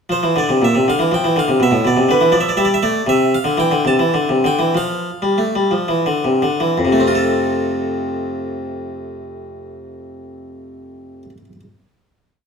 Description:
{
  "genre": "classical, baroque-style suite movement for harpsichord",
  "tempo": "55-83 BPM (dotted quarters)",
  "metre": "6/8",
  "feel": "rubato",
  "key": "F major",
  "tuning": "A4 = 442 Hz",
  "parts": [
    { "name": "harpsichord", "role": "solo", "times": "0.1-11.6 s", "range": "F2 to A5", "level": "-15 LUFS", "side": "equal", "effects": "none" }
  ],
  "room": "wet stone room reverb, RT60 1.1 s",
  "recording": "heard from further back in the room",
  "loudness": "-14 LUFS",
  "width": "side -6 dB against mid",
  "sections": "0.1-6.8 A section; 6.8-11.0 final chord",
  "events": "slowing down 2.3-6.8",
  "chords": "0.1 F5; 0.9 Dm; 1.6 G7; 3.1 C; 6.8 F",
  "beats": "| 0.11 0.88 | 1.61 2.34 | 3.07 3.85 | 4.73 5.71 | 6.77 7.81 | 8.87 9.91"
}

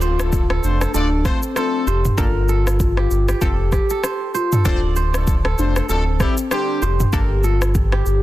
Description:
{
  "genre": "afrobeats",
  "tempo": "97 BPM",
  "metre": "4/4",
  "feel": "swing 58% on 16ths",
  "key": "D minor",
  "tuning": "A4 = 441 Hz",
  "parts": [
    { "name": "warm velvety synth lead", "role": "melody", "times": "0.0-8.2 s", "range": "C4 to G4", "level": "-24 LUFS", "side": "left 2 dB", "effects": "chorus" },
    { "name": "analog pluck", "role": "accompaniment", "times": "0.0-7.7 s", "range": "Bb3 to A4", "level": "-29 LUFS", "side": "left 2 dB", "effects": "chorus" },
    { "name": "kora", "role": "riff", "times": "0.0-8.2 s", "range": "G4 to D5", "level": "-27 LUFS", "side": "right 7 dB", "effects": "digital delay" },
    { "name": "sub bass with octave", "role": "bass", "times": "0.0-8.2 s", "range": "D1 to G1", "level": "-19 LUFS", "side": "equal", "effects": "none" },
    { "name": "deep house drum kit", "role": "drums", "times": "0.0-8.2 s", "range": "kick drum, rim click, shaker, toms", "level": "-21 LUFS", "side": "equal", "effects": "none" },
    { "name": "warm horn section", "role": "second line", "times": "0.2-7.0 s", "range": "D3 to D5", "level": "-26 LUFS", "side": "left 3 dB", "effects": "none" }
  ],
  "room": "digital ambience",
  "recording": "dense, heavily limited modern master",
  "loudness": "-16 LUFS",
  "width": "side -15 dB against mid",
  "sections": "0.0-8.2 A section",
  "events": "none",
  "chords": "0.0 Dm7; 2.2 Gmadd9; 3.4 Fadd9; 4.7 Dm7; 7.1 Gmadd9",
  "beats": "0.32 0.94 1.56 | 2.18 2.80 3.42 4.04 | 4.65 5.27 5.89 6.51 | 7.13 7.75"
}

